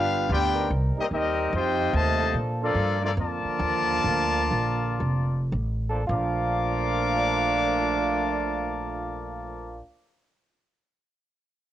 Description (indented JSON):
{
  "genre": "jazz, big band swing",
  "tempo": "102-147 BPM",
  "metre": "4/4",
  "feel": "swing 64% on 8ths",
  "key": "Bb major",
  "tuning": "A4 = 440 Hz",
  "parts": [
    { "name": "mellow trumpet section", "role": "melody", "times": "0.0-9.8 s", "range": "Bb3 to D6", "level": "-26 LUFS", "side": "left 4 dB", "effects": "none" },
    { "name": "warm trombone section", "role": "second line", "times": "0.0-9.8 s", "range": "Bb2 to A4", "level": "-30 LUFS", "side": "right 8 dB", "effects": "cassette tape, plate reverb" },
    { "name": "upright bass", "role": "bass", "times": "0.0-9.8 s", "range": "F1 to Bb2", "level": "-28 LUFS", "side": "equal", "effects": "none" },
    { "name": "muted trombone section", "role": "sustained chords", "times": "0.6-2.7, 5.9-9.8 s", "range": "Bb2 to Bb4", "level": "-32 LUFS", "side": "right 1 dB", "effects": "cassette tape, plate reverb" }
  ],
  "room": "moderate studio reverb, RT60 0.6 s",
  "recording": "home recording on cassette",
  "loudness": "-23 LUFS",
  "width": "side -12 dB against mid",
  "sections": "0.0-6.1 A section; 6.1-10.8 B section",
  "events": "slowing down 2.3-6.1",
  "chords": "0.0 G7; 0.7 Cm7; 1.5 F7; 2.3 Bbmaj7",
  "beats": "0.29 | 0.70 1.11 1.52 1.93 | 2.34 2.75 3.17 3.60 | 4.04 4.51 5.00 5.52 | 6.09 6.67 7.26 7.84 | 8.43 9.01 9.60"
}